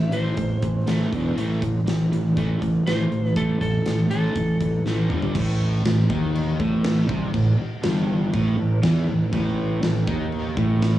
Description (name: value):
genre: hard rock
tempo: 121 BPM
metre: 4/4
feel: straight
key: A minor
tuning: A4 = 440 Hz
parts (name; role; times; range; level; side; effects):
- lightly driven lead guitar; melody; 0.0-4.8 s; A4 to E5; -31 LUFS; equal; cassette tape, analog delay
- crunchy overdriven guitar; riff; 0.0-11.0 s; E2 to A3; -24 LUFS; equal; cassette tape
- fuzz fingered electric bass; bass; 0.0-11.0 s; E1 to E2; -24 LUFS; right 1 dB; overdrive
- huge arena drum kit; drums; 0.1-10.9 s; crash cymbal, hi-hat, kick drum, snare drum, toms; -26 LUFS; equal; none
room: light reverb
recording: home recording on cassette, small room ambience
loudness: -20 LUFS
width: side -14 dB against mid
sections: 0.0-5.4 A section; 5.4-11.0 B section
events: drum fill 4.9-5.4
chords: 0.0 Am; 1.1 E5; 1.4 A5; 5.1 G5; 5.4 N.C.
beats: 0.38 0.88 | 1.38 1.87 2.37 2.87 | 3.37 3.87 4.36 4.86 | 5.36 5.86 6.35 6.85 | 7.34 7.84 8.34 8.84 | 9.33 9.83 10.32 10.82